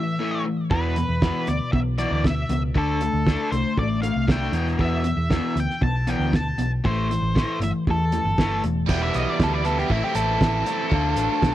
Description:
indie rock; 118 BPM; 4/4; straight; A4 = 440 Hz
octave-fuzz lead guitar; melody; 0.0-11.5 s; E4 to A5; -27 LUFS; equal; distortion, tape echo
overdriven electric guitar; riff; 0.0-11.5 s; E2 to F4; -26 LUFS; left 3 dB
hollow-body short-scale picked electric bass; bass; 0.7-11.5 s; E1 to E2; -25 LUFS; right 1 dB
cloth-damped thuddy drum kit; drums; 0.7-11.5 s; crash cymbal, hi-hat, kick drum, snare drum; -23 LUFS; right 1 dB
overdriven electric guitar; riff; 8.9-11.5 s; E3 to E4; -30 LUFS; right 16 dB; lush chorus
light reverb; dry, close 1970s-style studio recording; -20 LUFS; side -13 dB against mid
0.0-8.9 A section; 8.9-11.5 B section
lead electric guitar solo 8.9-11.5
0.0 A5; 0.7 E5; 2.8 D5; 4.5 E5; 6.8 Am; 8.9 Em7; 9.9 Am; 10.9 Dm
0.19 | 0.70 1.22 1.73 2.24 | 2.75 3.26 3.77 4.29 | 4.80 5.31 5.82 6.33 | 6.84 7.35 7.86 8.37 | 8.88 9.39 9.90 10.41 | 10.92 11.43

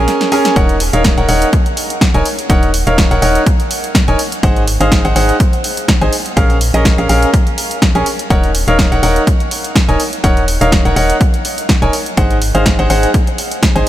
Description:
piano house; 124 BPM; 4/4; swing 54% on 16ths; Eb dorian; A4 = 440 Hz
clear grand piano; riff; 0.0-13.9 s; Db4 to Ab5; -15 LUFS; equal; sidechain pumping, diffuse ambient delay
organ-like FM bass; bass; 0.0-13.8 s; Eb1 to Bb1; -16 LUFS; equal; tube saturation, sidechain pumping
punchy analog drum machine; drums; 0.1-13.9 s; hi-hat, snare drum; -19 LUFS; equal; overdrive, studio reverb
electronic kick drum; drums; 0.6-13.7 s; -13 LUFS; equal; overdrive, studio reverb
light reverb; -10 LUFS; side -13 dB against mid
0.0-13.9 A section
break 0.1-0.6; drum fill 0.1-0.6
0.0 Bbm7; 0.6 Ebm7; 4.2 Ab7; 6.4 Bbm7; 8.3 Ebm7; 11.9 Ab7
0.08 | 0.56 1.04 1.53 2.01 | 2.50 2.98 3.46 3.95 | 4.43 4.92 5.40 5.88 | 6.37 6.85 7.33 7.82 | 8.30 8.79 9.27 9.75 | 10.24 10.72 11.21 11.69 | 12.17 12.66 13.14 13.62

